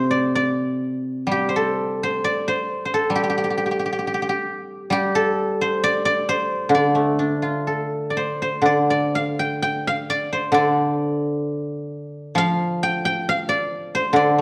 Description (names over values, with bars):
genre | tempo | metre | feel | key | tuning
chinese traditional, Chinese solo plucked strings | 61-68 BPM | 2/4 | rubato | D yu mode | A4 = 440 Hz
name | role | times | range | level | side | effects
guzheng | solo | 0.0-14.4 s | C3 to G5 | -22 LUFS | equal | none
room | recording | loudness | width
moderate recital hall reverb, RT60 1.4 s | worn, warbling old tape, cassette tape, warbly pitch drift | -22 LUFS | mono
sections
0.0-8.6 A section; 8.6-14.4 B section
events
none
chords
none